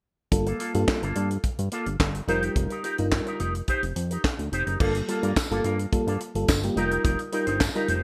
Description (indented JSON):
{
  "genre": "early-eighties boogie funk",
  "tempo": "107 BPM",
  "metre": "4/4",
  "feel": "straight",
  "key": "G minor",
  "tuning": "A4 = 441 Hz",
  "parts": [
    { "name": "FM electric piano with soft pad layer", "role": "accompaniment", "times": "0.3-7.9 s", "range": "G3 to Bb4", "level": "-31 LUFS", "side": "equal", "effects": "chorus" },
    { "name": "electric guitar with an envelope filter", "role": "riff", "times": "0.3-8.0 s", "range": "Bb3 to C5", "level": "-32 LUFS", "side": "equal", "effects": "subtle chorus" },
    { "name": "fat analog bass", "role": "bass", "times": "0.3-8.0 s", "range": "F1 to G2", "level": "-30 LUFS", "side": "equal", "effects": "none" },
    { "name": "tight funk drum kit", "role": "drums", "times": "0.3-8.0 s", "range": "crash cymbal, handclaps, hi-hat, kick drum, snare drum", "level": "-29 LUFS", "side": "equal", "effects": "none" },
    { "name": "tambourine", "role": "percussion", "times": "5.4-7.7 s", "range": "none", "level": "-38 LUFS", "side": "equal", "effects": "none" }
  ],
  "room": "moderate plate reverb, RT60 1.0 s, studio ambience",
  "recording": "bright 1980s-style digital production",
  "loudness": "-26 LUFS",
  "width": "mono",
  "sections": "0.3-4.8 A section; 4.8-8.0 B section",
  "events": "none",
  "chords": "0.3 Gm9; 2.3 F9sus4; 4.8 Gm9; 6.8 F9sus4"
}